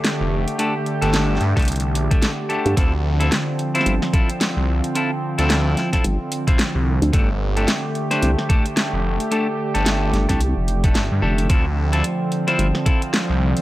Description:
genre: glitch hop.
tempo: 110 BPM.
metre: 4/4.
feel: swing 58% on 16ths.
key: D minor.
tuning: A4 = 440 Hz.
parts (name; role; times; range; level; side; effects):
warbly tape-like pad; sustained chords; 0.0-13.6 s; D3 to G4; -24 LUFS; right 1 dB; chorus, built-in reverb, sidechain pumping.
dubstep drum kit; drums; 0.0-13.6 s; hi-hat, snare drum; -24 LUFS; equal; none.
phased detuned saw bass; bass; 0.2-13.5 s; F1 to G2; -20 LUFS; equal; phaser.
clean electric guitar; stabs; 0.6-13.0 s; A3 to C5; -24 LUFS; left 1 dB; sidechain pumping, analog delay.
electronic kick drum; drums; 1.6-13.0 s; none; -18 LUFS; equal; none.
vowel-sweep wobble bass; bass; 2.7-12.7 s; F1 to G2; -19 LUFS; equal; chorus, tube saturation.
room: digital ambience.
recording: dry, gritty hardware recording.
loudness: -17 LUFS.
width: side -16 dB against mid.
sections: 0.0-13.6 A section.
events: none.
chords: 0.0 Gsus2; 2.8 Dm7; 7.1 Gsus2; 11.5 Dm7.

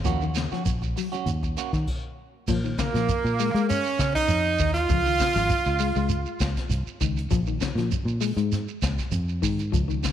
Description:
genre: afrobeat.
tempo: 99 BPM.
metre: 4/4.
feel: straight.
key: Bb minor.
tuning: A4 = 440 Hz.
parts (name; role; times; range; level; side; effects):
semi-hollow electric guitar; stabs; 0.0-1.8 s; Bb3 to Gb4; -33 LUFS; right 8 dB; none.
fingered electric bass; bass; 0.0-10.0 s; Ab1 to Ab3; -26 LUFS; equal; none.
shekere; percussion; 0.0-10.1 s; none; -32 LUFS; right 4 dB; none.
electric guitar at the edge of break-up; arpeggios; 0.1-10.1 s; Db3 to Ab3; -30 LUFS; left 9 dB; lush chorus.
jazz brush drum kit; drums; 0.1-10.1 s; crash cymbal, hi-hat, kick drum, snare drum; -31 LUFS; left 1 dB; none.
clear tenor saxophone; melody; 2.8-6.5 s; Bb3 to F4; -25 LUFS; right 3 dB; slapback echo.
brilliant trumpet; second line; 2.8-6.5 s; Bb3 to F4; -31 LUFS; right 9 dB; none.
room: moderate echo chamber reverb, RT60 2.2 s.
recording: 1960s-style stereo with parts hard left and right.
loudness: -22 LUFS.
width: side -10 dB against mid.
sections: 0.0-2.5 A section; 2.5-10.1 B section.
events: stop 1.9-2.5.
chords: 0.0 Ebm7; 2.5 Bbm7; 4.9 Db; 7.3 Bb7(no3).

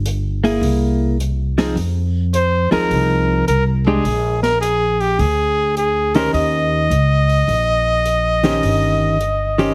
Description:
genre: jazz, small-group swing and bop.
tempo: 105 BPM.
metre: 4/4.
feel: swing 67% on 8ths.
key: Eb mixolydian.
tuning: A4 = 441 Hz.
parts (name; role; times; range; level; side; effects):
upright bass; bass; 0.0-9.7 s; G1 to F2; -21 LUFS; equal; none.
open jazz drum kit; drums; 0.1-9.7 s; hi-hat, snare drum; -33 LUFS; equal; none.
archtop guitar, miked and amplified; accompaniment; 0.4-9.7 s; Eb3 to C5; -20 LUFS; equal; none.
clear trumpet; melody; 2.3-9.7 s; G4 to Eb5; -20 LUFS; equal; none.
room: light reverb.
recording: heavily compressed radio sound, multiband compression.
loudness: -17 LUFS.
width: mono.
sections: 0.0-9.7 A section.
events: none.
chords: 0.0 Gm; 0.6 C7alt; 1.8 Fm7; 4.1 Bb7; 6.3 Eb6.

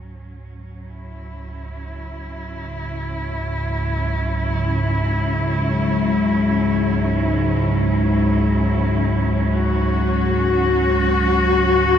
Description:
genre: dark ambient drone.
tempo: free time.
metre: none.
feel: none.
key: C# minor.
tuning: A4 = 440 Hz.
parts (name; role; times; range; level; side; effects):
warm chamber cello section; sustained chords; 0.0-12.0 s; F#3 to F#4; -21 LUFS; left 1 dB; none.
analog drone; drone; 0.0-12.0 s; C#2 to G#2; -20 LUFS; equal; chorus.
room: wet cathedral reverb, RT60 4.9 s.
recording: none.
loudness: -17 LUFS.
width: side -9 dB against mid.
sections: 0.0-12.0 A section.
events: fade-in on cello section 0.0-12.0.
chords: 0.0 C#m.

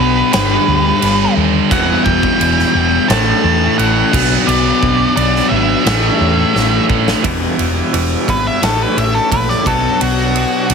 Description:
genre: quiet-loud alternative rock.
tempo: 87 BPM.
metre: 4/4.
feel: straight.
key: E dorian.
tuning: A4 = 445 Hz.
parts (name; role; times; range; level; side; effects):
octave-fuzz lead guitar; melody; 0.0-10.7 s; F#4 to A5; -17 LUFS; equal; distortion, slapback echo, plate reverb.
crunchy overdriven guitar; riff; 0.0-7.2 s; G2 to F#4; -18 LUFS; right 1 dB; none.
heavy high-gain guitar; riff; 0.0-7.2 s; E2 to B3; -18 LUFS; right 14 dB; distortion.
raw garage guitar; riff; 0.0-10.7 s; E2 to B3; -19 LUFS; left 16 dB; overdrive.
hollow-body short-scale fingered electric bass; bass; 0.0-10.7 s; E1 to E2; -18 LUFS; equal; none.
huge arena drum kit; drums; 0.3-10.7 s; crash cymbal, kick drum, ride cymbal, snare drum; -19 LUFS; right 1 dB; none.
clean electric guitar; arpeggios; 7.2-10.7 s; E2 to F#4; -21 LUFS; right 8 dB; tremolo, plate reverb.
room: moderate studio reverb, RT60 0.6 s.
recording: heavily compressed radio sound, multiband compression.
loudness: -11 LUFS.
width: side -6 dB against mid.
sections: 0.0-7.2 A section; 7.2-10.7 B section.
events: drum fill 6.5-7.2; lead electric guitar solo 7.2-10.7.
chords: 0.3 G; 1.7 Em; 3.1 A; 4.1 Bm; 5.9 A; 7.2 Em; 8.6 A; 9.7 Bm.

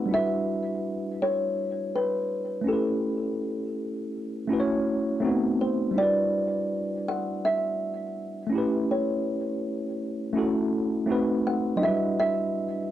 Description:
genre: hip hop.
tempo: 82 BPM.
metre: 4/4.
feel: swing 61% on 16ths.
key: E dorian.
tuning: A4 = 439 Hz.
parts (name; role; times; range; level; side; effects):
kalimba; melody; 0.0-12.9 s; A4 to F#5; -28 LUFS; equal; low-pass filter.
tine electric piano; accompaniment; 0.0-12.9 s; F#3 to C#5; -26 LUFS; equal; overdrive, fast stereo tremolo, low-pass filter.
room: moderate studio reverb, RT60 0.6 s.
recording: dark, warm production.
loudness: -24 LUFS.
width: side -12 dB against mid.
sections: 0.0-12.9 A section.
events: none.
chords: 0.1 Em9; 2.7 A7; 4.5 F#m7; 5.2 B7b9; 6.0 Em9; 8.5 A7; 10.4 F#m7; 11.1 B7b9; 11.8 Em9.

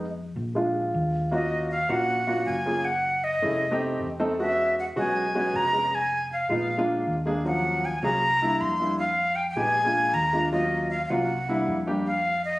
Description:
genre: Afro-Cuban jazz.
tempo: 156 BPM.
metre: 4/4.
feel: straight.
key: Eb minor.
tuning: A4 = 439 Hz.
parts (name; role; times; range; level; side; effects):
warm grand piano; accompaniment; 0.0-12.1 s; F3 to A4; -27 LUFS; equal; none.
hollow-body short-scale fingered electric bass; bass; 0.0-12.6 s; Fb1 to F2; -33 LUFS; equal; none.
breathy bright jazz flute; melody; 1.3-12.6 s; Eb5 to C6; -25 LUFS; equal; none.
room: moderate large studio reverb, RT60 0.9 s.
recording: recorded on a phone in the room, studio ambience.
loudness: -23 LUFS.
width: side -18 dB against mid.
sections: 0.0-1.3 A section; 1.3-12.6 B section.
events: grand piano solo 0.0-1.3.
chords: 0.0 N.C.; 0.6 Bb7; 1.3 Ebm7; 2.9 Gbm7; 3.6 F9; 4.4 E6; 5.9 Fm7b5; 6.7 Bb7; 7.5 Ebm9; 8.2 C7; 9.0 Fm7b5; 9.8 Bb7; 10.5 Ebm7; 11.3 C7; 12.1 F7(no3).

